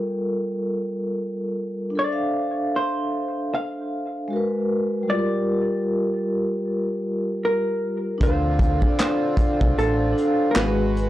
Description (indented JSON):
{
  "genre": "lo-fi hip hop",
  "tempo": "77 BPM",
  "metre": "4/4",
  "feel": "swing 60% on 16ths",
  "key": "D minor",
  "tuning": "A4 = 440 Hz",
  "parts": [
    { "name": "vibraphone with soft mallets", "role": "accompaniment", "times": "0.0-11.1 s", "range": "G3 to F5", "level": "-23 LUFS", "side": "equal", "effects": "cassette tape, low-pass filter, plate reverb" },
    { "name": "vintage hollow-body jazz guitar", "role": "melody", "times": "2.0-11.1 s", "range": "A4 to F5", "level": "-26 LUFS", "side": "equal", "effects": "low-pass filter" },
    { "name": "accordion", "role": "sustained chords", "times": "8.2-11.1 s", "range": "D3 to B4", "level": "-31 LUFS", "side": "equal", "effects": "low-pass filter, plate reverb" },
    { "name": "deep dub fingered electric bass", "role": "bass", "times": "8.2-11.1 s", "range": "G#1 to D2", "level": "-24 LUFS", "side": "equal", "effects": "tube saturation" },
    { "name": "vintage brush drum kit", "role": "drums", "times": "8.2-11.1 s", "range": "handclaps, hi-hat, kick drum, snare drum", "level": "-22 LUFS", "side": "equal", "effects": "none" },
    { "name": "finger snap", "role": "percussion", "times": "9.0-10.8 s", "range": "none", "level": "barely audible", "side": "none", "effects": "none" }
  ],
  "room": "light reverb",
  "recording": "dry, gritty hardware recording, cassette tape",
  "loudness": "-21 LUFS",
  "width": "side -14 dB against mid",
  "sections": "0.0-8.2 A section; 8.2-11.1 B section",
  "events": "none",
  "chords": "0.0 Gm9; 2.0 Dm7; 4.3 G#m9; 5.1 Gm7; 8.2 Dm7; 10.5 G#m7"
}